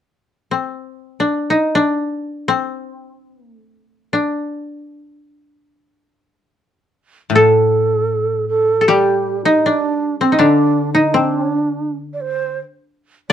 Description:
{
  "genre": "japanese traditional, Japanese chamber music",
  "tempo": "free time",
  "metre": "none",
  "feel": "none",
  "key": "D in sen",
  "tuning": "A4 = 440 Hz",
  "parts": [
    { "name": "koto", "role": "melody", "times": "0.5-13.3 s", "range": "C4 to A4", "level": "-16 LUFS", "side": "left 1 dB", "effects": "none" },
    { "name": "breathy mellow long shakuhachi", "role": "second line", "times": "7.3-13.3 s", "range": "C4 to D5", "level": "-17 LUFS", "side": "right 4 dB", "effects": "none" },
    { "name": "koto", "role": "accompaniment", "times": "7.3-13.3 s", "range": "A2 to G3", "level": "-21 LUFS", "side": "left 4 dB", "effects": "none" }
  ],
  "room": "light reverb",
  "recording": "dark, warm production",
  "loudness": "-14 LUFS",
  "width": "side -10 dB against mid",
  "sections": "0.0-7.3 A section; 7.3-13.3 B section",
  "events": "none",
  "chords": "none",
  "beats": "free time"
}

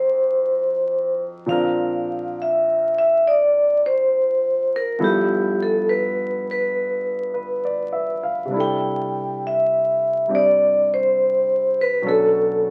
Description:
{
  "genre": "jazz ballad",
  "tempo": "68 BPM",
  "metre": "4/4",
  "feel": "swing 67% on 8ths",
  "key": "unclear",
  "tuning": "A4 = 440 Hz",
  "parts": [
    { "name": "vibraphone with medium mallets", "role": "melody", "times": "0.0-12.7 s", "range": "G4 to G5", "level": "-21 LUFS", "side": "equal", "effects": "none" },
    { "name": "clear concert grand piano", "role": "accompaniment", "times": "0.0-12.7 s", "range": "F2 to F5", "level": "-28 LUFS", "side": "equal", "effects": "none" }
  ],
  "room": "moderate club reverb, RT60 0.6 s",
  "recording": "very old 78 rpm record, vinyl crackle",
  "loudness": "-20 LUFS",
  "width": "mono",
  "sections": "0.0-12.7 A section",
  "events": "none",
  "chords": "0.0 F7b9; 1.5 Bb; 5.0 G13; 8.5 C69; 12.0 Bm7",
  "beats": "0.60 | 1.48 2.35 3.23 4.11 | 4.99 5.87 6.75 7.63 | 8.52 9.40 10.28 11.16 | 12.04"
}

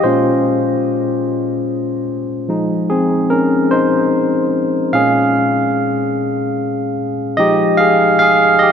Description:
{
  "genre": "R&B",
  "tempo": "49 BPM (dotted quarters)",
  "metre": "6/8",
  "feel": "straight",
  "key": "F minor",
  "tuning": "A4 = 440 Hz",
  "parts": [
    { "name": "barky tine electric piano", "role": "solo", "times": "0.0-8.7 s", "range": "Bb2 to F5", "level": "-13 LUFS", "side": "equal", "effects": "none" }
  ],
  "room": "wet cathedral reverb, RT60 4.6 s",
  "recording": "recorded in a church or concert hall",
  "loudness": "-13 LUFS",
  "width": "side -7 dB against mid",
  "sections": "0.0-7.4 A section; 7.4-8.7 B section",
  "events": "tine electric piano solo 0.0-7.4, 7.4-8.7",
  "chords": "0.0 Bbm9; 2.5 Fm7; 4.9 Bbm7; 7.4 Fm9",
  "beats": "| 0.04 1.26 | 2.49 3.71 | 4.94 6.16 | 7.38 8.61"
}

